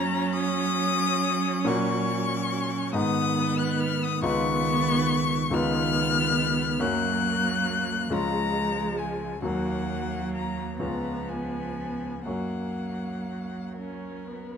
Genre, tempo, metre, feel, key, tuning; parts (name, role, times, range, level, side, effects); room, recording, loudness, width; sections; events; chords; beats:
classical, slow romantic movement for piano quartet; 40-47 BPM (dotted quarters); 6/8; rubato; F# major; A4 = 440 Hz
warm violin; melody; 0.0-14.6 s; A#4 to F#6; -29 LUFS; left 8 dB
rich cello; second line; 0.0-14.6 s; D#3 to F#3; -31 LUFS; right 7 dB
clear concert grand piano; accompaniment; 0.0-14.6 s; C#2 to F#4; -30 LUFS; left 2 dB
rich viola; accompaniment; 0.0-14.6 s; G#3 to C#4; -31 LUFS; right 2 dB
moderate recital hall reverb, RT60 1.6 s; close, detailed microphones; -24 LUFS; side -7 dB against mid
0.0-14.6 A section
0.0 F#; 1.7 F#/A#; 3.0 G#m; 4.2 C#9; 6.8 F#; 8.1 C#; 9.4 D#m; 10.8 C#7; 12.3 F#
0.34 | 1.67 2.95 | 4.24 5.52 | 6.80 8.12 | 9.44 10.80 | 12.26 13.77